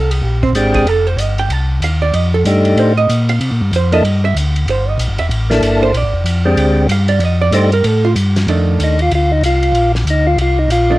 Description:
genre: soul jazz organ trio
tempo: 189 BPM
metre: 4/4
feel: swing 61% on 8ths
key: F mixolydian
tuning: A4 = 439 Hz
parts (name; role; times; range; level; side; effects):
- archtop guitar, miked and amplified; accompaniment; 0.0-11.0 s; Eb3 to A5; -18 LUFS; right 5 dB; cassette tape
- mellow tonewheel organ; bass; 0.0-11.0 s; E1 to C3; -14 LUFS; left 1 dB; slow rotary speaker
- warm soul drum kit; drums; 0.1-10.8 s; hi-hat, kick drum, ride cymbal, snare drum; -24 LUFS; equal; cassette tape
- percussive tonewheel organ; melody; 0.6-11.0 s; Ab3 to A4; -14 LUFS; equal; slow rotary speaker
room: small room reverb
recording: home recording on cassette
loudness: -11 LUFS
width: side -17 dB against mid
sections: 0.0-8.5 A section; 8.5-11.0 A section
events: hollow-body jazz guitar solo 0.0-8.5; tonewheel organ solo 8.5-11.0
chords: 0.0 Bb13; 0.9 F13; 3.4 C13; 5.9 Bb13; 7.2 F13; 8.5 F6; 9.7 Bbadd9

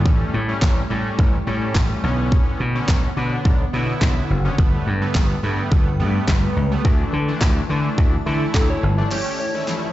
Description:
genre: dance-pop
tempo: 106 BPM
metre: 4/4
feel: straight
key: D major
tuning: A4 = 437 Hz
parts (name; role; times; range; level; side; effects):
- big bright polysynth; accompaniment; 0.0-9.9 s; D3 to G4; -26 LUFS; equal; chorus, sidechain pumping
- glassy FM pad; sustained chords; 0.0-9.9 s; D3 to A5; -29 LUFS; left 2 dB; ensemble chorus, built-in reverb, phaser, sidechain pumping
- slap bass; bass; 0.0-9.0 s; F#1 to D3; -21 LUFS; equal; sidechain pumping
- pop drum kit; drums; 0.1-9.8 s; crash cymbal, handclaps, kick drum, snare drum; -19 LUFS; equal; none
- soft struck synth lead; melody; 8.5-9.9 s; A4 to D5; -26 LUFS; equal; chorus, dub echo
- riser; sound effects; 9.3-9.9 s; none; -33 LUFS; right 1 dB; none
room: little or no reverb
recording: played on a big sound system in a bare room, large studio reverb, nothing above 7.9 kHz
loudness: -17 LUFS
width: side -14 dB against mid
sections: 0.0-9.1 A section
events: drum fill 9.1-9.9; riser 9.3-9.9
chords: 0.1 A7; 2.0 Bmadd9; 4.6 Gadd9; 6.8 Dsus2; 9.1 A7

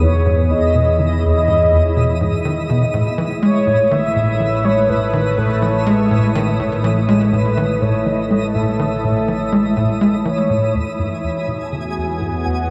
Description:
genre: ambient, sequencer-driven space music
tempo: 123 BPM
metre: 4/4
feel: straight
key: E major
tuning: A4 = 440 Hz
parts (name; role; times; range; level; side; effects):
- mellow horn-like synth lead; melody; 0.0-12.7 s; A4 to A5; -23 LUFS; equal; subtle chorus, tape echo
- sweeping resonant pad; sustained chords; 0.0-12.7 s; E3 to C#5; -24 LUFS; equal; chorus
- tight sequencer bass; riff; 0.0-12.5 s; E2 to G#3; -21 LUFS; equal; lush chorus, tape echo
- analog drone; bass; 0.0-12.7 s; A1 to E2; -24 LUFS; equal; chorus
- twinkling granular texture; texture; 0.0-12.7 s; E4 to D#6; -31 LUFS; equal; built-in reverb
room: wet huge ambient reverb, RT60 9.2 s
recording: small room ambience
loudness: -17 LUFS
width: mono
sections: 0.0-10.7 A section; 10.7-12.7 B section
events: filter sweep on analog synth bass 10.7-12.7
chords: 0.0 Emaj7; 2.9 Amaj7; 10.7 E

